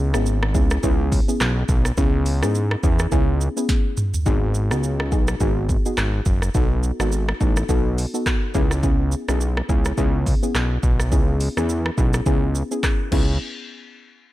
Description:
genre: afrobeats.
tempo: 105 BPM.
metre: 4/4.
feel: swing 58% on 16ths.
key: C# minor.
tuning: A4 = 439 Hz.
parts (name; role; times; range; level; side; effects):
soft round pluck; accompaniment; 0.0-13.3 s; B3 to A4; -26 LUFS; left 1 dB; chorus.
fat analog bass; bass; 0.0-13.4 s; F#1 to G#2; -21 LUFS; equal; none.
afro-pop drum kit; drums; 0.1-13.3 s; crash cymbal, handclaps, hi-hat, kick drum, rim click, shaker, snare drum, toms; -22 LUFS; equal; none.
room: digital ambience.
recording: none.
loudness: -18 LUFS.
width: side -15 dB against mid.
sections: 0.0-4.3 A section; 4.3-13.4 B section.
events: drum fill 3.7-4.3.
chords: 0.0 C#m7; 4.3 G#m7; 6.5 B7; 8.5 C#m7; 13.4 N.C..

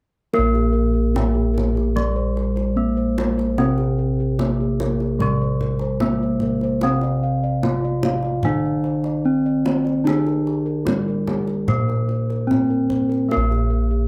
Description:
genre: Javanese gamelan.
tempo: 74 BPM.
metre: 4/4.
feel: straight.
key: Bb slendro.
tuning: A4 = 436 Hz.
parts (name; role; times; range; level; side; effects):
gamelan-type bronze metallophone; melody; 0.3-14.1 s; Ab3-45c to F4+25c; -26 LUFS; equal; none.
gamelan-type bronze metallophone; accompaniment; 0.3-14.1 s; C3+30c to Bb3; -27 LUFS; equal; none.
gamelan-type bossed gongs; arpeggios; 0.3-14.1 s; Ab4-45c to F5+25c; -31 LUFS; equal; analog delay.
gamelan-type bossed gongs; bass; 0.3-14.1 s; Bb1 to Bb4; -26 LUFS; equal; none.
kendang; percussion; 0.3-13.6 s; none; -30 LUFS; equal; none.
room: light reverb.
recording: close, detailed microphones.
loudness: -20 LUFS.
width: mono.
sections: 0.3-14.1 A section.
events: none.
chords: none.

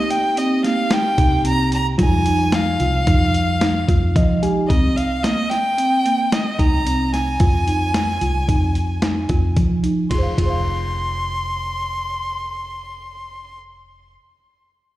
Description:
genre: progressive instrumental, band music in an uneven meter.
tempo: 111 BPM.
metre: 5/4.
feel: straight.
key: F minor.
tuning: A4 = 440 Hz.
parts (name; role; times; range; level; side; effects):
clear violin; melody; 0.0-13.6 s; Eb5 to C6; -22 LUFS; equal; slapback echo, digital delay.
mellow tine electric piano; accompaniment; 0.0-4.7 s; G3 to Ab5; -25 LUFS; left 2 dB; slapback echo.
folk marimba with soft mallets; arpeggios; 0.0-14.3 s; Bb3 to F5; -23 LUFS; right 2 dB; none.
boom bap sampler-style drum kit; drums; 0.1-10.5 s; hi-hat, kick drum, ride cymbal, snare drum; -20 LUFS; equal; none.
hollow-body short-scale fingered electric bass; bass; 1.2-14.2 s; F1 to F3; -21 LUFS; equal; none.
room: light reverb.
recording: live gig heard through the venue's PA, recital hall reverb.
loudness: -16 LUFS.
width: side -15 dB against mid.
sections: 0.0-10.1 A section; 10.1-12.8 B section.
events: tine electric piano fill 3.9-4.7.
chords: 0.0 Cm7; 2.0 Fm7; 4.7 Cm7; 7.4 Fm7; 10.1 Fm.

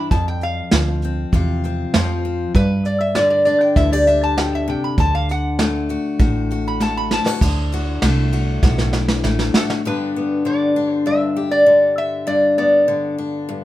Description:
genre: honky-tonk and classic country.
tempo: 99 BPM.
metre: 4/4.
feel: straight.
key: G major.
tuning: A4 = 440 Hz.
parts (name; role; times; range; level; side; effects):
lap resonator guitar; melody; 0.0-13.1 s; A4 to B5; -17 LUFS; equal; none.
picked steel-string acoustic guitar; accompaniment; 0.0-13.6 s; F2 to G4; -22 LUFS; left 3 dB; none.
woody fretless electric bass; bass; 0.1-9.6 s; A1 to G2; -20 LUFS; right 1 dB; none.
vintage brush drum kit; drums; 0.1-9.8 s; crash cymbal, hi-hat, kick drum, ride cymbal, snare drum; -19 LUFS; right 1 dB; none.
room: moderate studio reverb, RT60 0.8 s.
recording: minimal, uncompressed stereo recording.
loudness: -15 LUFS.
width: side -14 dB against mid.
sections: 0.0-7.4 A section; 7.4-9.8 B section; 9.8-13.6 C section.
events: resonator guitar played with a steel bar solo 0.0-7.4; drum fill 6.8-7.4, 8.6-9.8.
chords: 0.1 F5; 2.5 G; 5.0 D; 9.8 G.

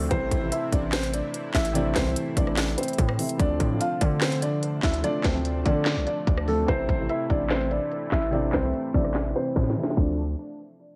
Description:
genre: hip hop, trap.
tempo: 146 BPM.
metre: 4/4.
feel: half-time.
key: D minor.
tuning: A4 = 440 Hz.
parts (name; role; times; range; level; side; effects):
felt-muted upright piano; melody; 0.0-10.2 s; A3 to F5; -30 LUFS; equal; digital delay.
dark concert grand piano; accompaniment; 0.0-10.2 s; C3 to F4; -34 LUFS; equal; none.
warm analog pad; sustained chords; 0.0-10.2 s; C3 to E4; -38 LUFS; equal; chorus.
distorted 808-style bass; bass; 0.0-10.4 s; A1 to D3; -30 LUFS; equal; distortion.
trap drum kit; drums; 0.1-10.1 s; crash cymbal, handclaps, hi-hat, kick drum, rim click, snare drum; -29 LUFS; equal; none.
room: light reverb, studio reverb.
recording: low-pass filter.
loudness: -25 LUFS.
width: mono.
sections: 0.0-3.4 A section; 3.4-10.0 B section.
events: filter sweep 3.4-10.0; drum fill 9.6-10.0.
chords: 0.1 Am; 3.4 Dm7; 6.7 Am; 10.0 Dm7.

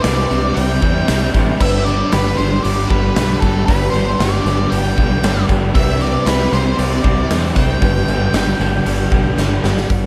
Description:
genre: rock, shoegaze and dream pop.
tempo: 116 BPM.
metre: 4/4.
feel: straight.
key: G major.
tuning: A4 = 440 Hz.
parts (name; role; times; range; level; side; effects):
octave-fuzz lead guitar; melody; 0.0-9.6 s; A4 to G5; -25 LUFS; equal; distortion, analog delay.
picked twelve-string acoustic guitar; arpeggios; 0.0-10.1 s; F#4 to D5; -30 LUFS; equal; none.
direct-recorded clean electric guitar; riff; 0.0-10.1 s; G2 to G4; -25 LUFS; equal; reverse reverb.
distorted electric guitar; riff; 0.0-9.9 s; G2 to C4; -26 LUFS; equal; distortion.
thick fuzz guitar; riff; 0.0-10.1 s; G2 to C4; -25 LUFS; equal; none.
growling fingered electric bass; bass; 0.0-10.1 s; G1 to E2; -22 LUFS; equal; overdrive.
big rock drum kit; drums; 0.0-10.0 s; crash cymbal, hi-hat, kick drum, snare drum; -22 LUFS; equal; none.
tambourine; percussion; 0.0-9.8 s; none; -41 LUFS; equal; none.
room: moderate lush hall reverb, RT60 2.5 s.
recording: dreamy mix soaked in reverb.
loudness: -16 LUFS.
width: mono.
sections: 0.0-9.9 A section.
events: drum fill 9.4-9.9.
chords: 0.0 Cadd9; 1.6 G; 5.8 Cadd9; 7.8 G.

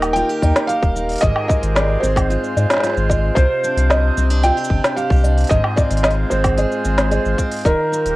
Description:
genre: folktronica.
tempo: 112 BPM.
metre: 4/4.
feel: straight.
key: unclear.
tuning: A4 = 440 Hz.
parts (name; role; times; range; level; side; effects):
felt-muted upright piano; melody; 0.0-8.2 s; Bb4 to G5; -21 LUFS; right 1 dB; cassette tape.
music box; second line; 0.0-7.9 s; Eb5; -27 LUFS; equal; cassette tape, analog delay.
hand-pumped harmonium; sustained chords; 0.0-8.2 s; C3 to C5; -25 LUFS; right 1 dB; cassette tape.
picked steel-string acoustic guitar; arpeggios; 0.0-8.2 s; Ab2 to Ab4; -24 LUFS; equal; cassette tape.
warm sub bass; bass; 0.0-8.2 s; Eb1 to Ab2; -18 LUFS; equal; none.
organic electronic drum kit; drums; 0.0-8.2 s; hi-hat, shaker, snare drum, woodblock; -21 LUFS; equal; overdrive, cassette tape.
electronic kick drum; drums; 0.4-7.8 s; none; -18 LUFS; equal; overdrive, cassette tape.
room: light reverb.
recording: home recording on cassette.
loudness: -14 LUFS.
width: side -18 dB against mid.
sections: 0.0-8.2 A section.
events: none.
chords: 0.0 Eb; 1.2 Ab6; 3.4 Cmadd9; 5.5 Ab6; 7.7 Eb.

